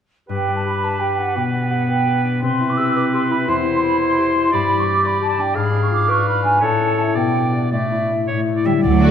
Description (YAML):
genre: classical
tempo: 113 BPM (dotted quarters)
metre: 6/8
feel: rubato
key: G major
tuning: A4 = 440 Hz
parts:
  - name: clear clarinet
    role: second line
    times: 0.3-9.1 s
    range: A3 to B4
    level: -23 LUFS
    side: equal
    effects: none
  - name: clear oboe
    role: second line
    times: 0.3-9.1 s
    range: B4 to E#5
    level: -25 LUFS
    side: right 2 dB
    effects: none
  - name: mellow hollow flute section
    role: second line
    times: 0.3-9.1 s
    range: D5 to E6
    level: -20 LUFS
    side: right 2 dB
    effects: none
  - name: concert harp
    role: arpeggios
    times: 0.3-9.1 s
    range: E2 to E5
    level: -21 LUFS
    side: left 5 dB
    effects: none
  - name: mellow French horn section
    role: sustained chords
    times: 8.6-9.1 s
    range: F#3 to G3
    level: -24 LUFS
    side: left 2 dB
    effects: none
  - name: rich symphonic cello section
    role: bass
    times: 8.7-9.1 s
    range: F#3 to G3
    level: -19 LUFS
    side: right 8 dB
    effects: none
  - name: rich studio double bass section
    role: bass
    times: 8.8-9.1 s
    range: D2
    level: -15 LUFS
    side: right 3 dB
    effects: none
  - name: warm symphonic violin section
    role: melody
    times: 9.0-9.1 s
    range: D5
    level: -26 LUFS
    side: right 1 dB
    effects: none
  - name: rich studio violin section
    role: second line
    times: 9.0-9.1 s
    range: F#4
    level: -24 LUFS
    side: left 3 dB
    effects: none
  - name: warm symphonic viola section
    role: accompaniment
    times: 9.0-9.1 s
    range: A3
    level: -20 LUFS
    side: right 4 dB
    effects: none
room: wet scoring stage reverb, RT60 1.5 s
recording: none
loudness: -16 LUFS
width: side -8 dB against mid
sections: 0.3-8.8 A section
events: none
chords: 0.3 G; 1.4 G/B; 2.4 Cmaj7; 3.5 C/E; 4.5 G5; 5.6 G#dim7; 6.6 A; 7.2 G/B; 7.7 Asus4; 8.3 A